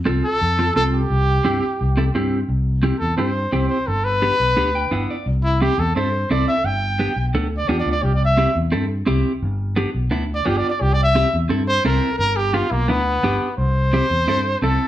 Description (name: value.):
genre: latin, cumbia.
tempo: 173 BPM.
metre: 4/4.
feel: straight.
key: C major.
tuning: A4 = 442 Hz.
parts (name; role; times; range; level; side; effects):
clean electric guitar; accompaniment; 0.1-14.9 s; B3 to G5; -22 LUFS; right 1 dB; none.
fingered electric bass; bass; 0.1-14.8 s; G1 to G2; -21 LUFS; left 1 dB; none.
warm trumpet; melody; 0.2-14.9 s; Bb3 to G5; -20 LUFS; equal; none.
room: moderate large studio reverb, RT60 0.8 s.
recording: band playing live in one room.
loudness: -17 LUFS.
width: side -13 dB against mid.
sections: 0.0-2.5 A section; 2.5-13.6 B section; 13.6-14.9 C section.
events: trumpet solo 2.5-13.6; clean electric guitar fill 4.6-5.3.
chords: 0.0 F; 1.1 C; 3.9 G; 5.3 C; 6.6 G7; 8.0 C; 9.4 G7; 10.8 C; 12.2 G; 13.6 C.